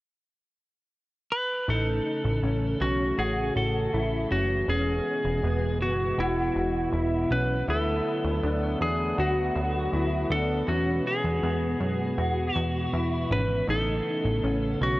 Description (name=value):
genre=dream pop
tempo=80 BPM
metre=4/4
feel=straight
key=unclear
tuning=A4 = 444 Hz
part: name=clean lap steel guitar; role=melody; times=1.3-15.0 s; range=E4 to B4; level=-28 LUFS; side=equal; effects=tape echo
part: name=warm analog pad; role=sustained chords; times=1.7-15.0 s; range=B2 to C#4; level=-32 LUFS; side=equal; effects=chorus
part: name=mellow electric guitar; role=arpeggios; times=1.7-15.0 s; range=B3 to F#4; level=-32 LUFS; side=left 1 dB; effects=ensemble chorus, tape echo
part: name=plucky analog bass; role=bass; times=1.7-15.0 s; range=E1 to F#2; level=-28 LUFS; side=equal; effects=none
room=moderate huge ambient reverb, RT60 6.2 s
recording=worn, warbling old tape, cassette tape, warbly pitch drift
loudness=-24 LUFS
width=side -18 dB against mid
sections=0.0-1.7 A section; 1.7-15.0 B section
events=none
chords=0.0 N.C.; 1.7 A; 4.7 E; 7.7 Dadd9; 10.7 E; 13.7 A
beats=0.18 0.93 | 1.68 2.43 3.18 3.93 | 4.68 5.43 6.18 6.93 | 7.68 8.43 9.18 9.93 | 10.68 11.43 12.18 12.93 | 13.68 14.43